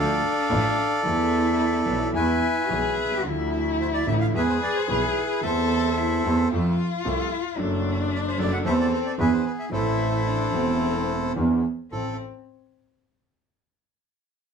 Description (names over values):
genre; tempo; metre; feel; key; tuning
tango; 111 BPM; 4/4; rubato; A harmonic minor; A4 = 440 Hz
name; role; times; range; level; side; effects
bandoneon; melody; 0.0-12.2 s; E4 to G#5; -26 LUFS; equal; none
warm cello; second line; 0.0-12.2 s; B3 to A4; -28 LUFS; left 4 dB; none
warm concert grand piano; accompaniment; 0.0-12.2 s; E1 to A4; -29 LUFS; right 2 dB; none
bright double bass; bass; 0.0-12.1 s; E1 to F2; -26 LUFS; right 2 dB; none
room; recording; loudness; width
moderate studio ambience, RT60 0.5 s; band playing live in one room; -21 LUFS; side -6 dB against mid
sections
0.0-11.9 A section; 11.9-14.1 B section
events
none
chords
0.0 Dm; 1.1 Esus4; 2.1 E; 3.3 Dmadd9; 4.4 E; 5.4 Am/E; 6.5 F; 7.6 D/F#; 8.7 Am/E; 9.2 E7; 9.7 Am; 11.4 E7; 11.9 Am